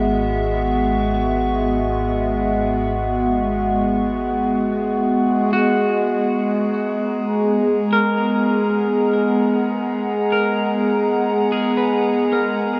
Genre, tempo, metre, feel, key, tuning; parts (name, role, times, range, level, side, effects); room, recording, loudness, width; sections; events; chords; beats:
ambient; free time; G# minor; A4 = 440 Hz
warbly tape-like pad; sustained chords; 0.0-12.8 s; G#3 to C#6; -22 LUFS; equal; chorus, built-in reverb, phaser, shimmer reverb
deep rumbling drone; bass; 0.0-5.5 s; G#1; -29 LUFS; equal; built-in reverb
pedal harmonium; drone; 0.0-12.8 s; G#3; -25 LUFS; equal
glass harmonica; texture; 0.0-12.8 s; F#4 to G#5; -28 LUFS; equal; shimmer reverb
electric guitar at the edge of break-up; arpeggios; 5.5-12.8 s; F#4 to B4; -27 LUFS; equal; spring reverb, delay, shimmer reverb
wet huge ambient reverb, RT60 8.4 s; worn, warbling old tape, cassette tape, warbly pitch drift; -19 LUFS; mono
0.0-5.5 A section; 5.5-12.8 B section
0.0 E/G#; 5.5 G#m7
free time